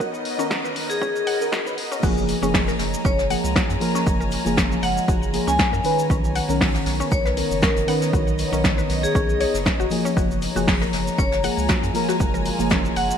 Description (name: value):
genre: deep house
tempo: 118 BPM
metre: 4/4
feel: swing 54% on 16ths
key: F# major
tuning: A4 = 439 Hz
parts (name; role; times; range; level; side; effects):
- deep dark ambient pad; sustained chords; 0.0-13.2 s; G#3 to A#5; -33 LUFS; equal; chorus, built-in reverb, sidechain pumping
- mallet-like synth pluck; arpeggios; 0.0-13.0 s; C#4 to F#5; -31 LUFS; left 4 dB; chorus, phaser, sidechain pumping, ping-pong delay
- round analog bass; bass; 0.0-13.1 s; F#1 to F#2; -28 LUFS; right 1 dB; high-pass filter
- electronic kick drum; drums; 0.0-12.8 s; none; -23 LUFS; equal; overdrive
- punchy analog drum machine; drums; 0.0-13.2 s; crash cymbal, hi-hat, shaker, snare drum; -27 LUFS; equal; none
- warm studio string section; texture; 0.0-13.2 s; B3 to A#5; -30 LUFS; left 2 dB; sidechain pumping
- mellow FM electric piano; stabs; 0.4-13.2 s; D#3 to B4; -25 LUFS; equal; chorus, phaser, sidechain pumping, ping-pong delay
- vibraphone with hard mallets; melody; 0.9-13.1 s; G#4 to G#5; -26 LUFS; left 1 dB; ping-pong delay
- jazz brush drum kit; drums; 2.0-13.1 s; hi-hat, shaker, snare drum; -32 LUFS; left 1 dB; high-pass filter on hats, high-pass filter on snare, high-pass filter on perc, high-pass filter on room
room: moderate lush hall reverb, RT60 2.1 s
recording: bright 1980s-style digital production, high-pass filter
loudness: -19 LUFS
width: side -8 dB against mid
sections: 0.0-2.0 A section; 2.0-13.2 B section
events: build-up 0.0-2.0; filter sweep on vibraphone 0.0-2.0; filter sweep on synth arpeggio sound 0.0-2.0; filter sweep 0.0-2.0; drop 2.0-13.2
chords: 0.0 Bmaj9; 2.0 F#maj9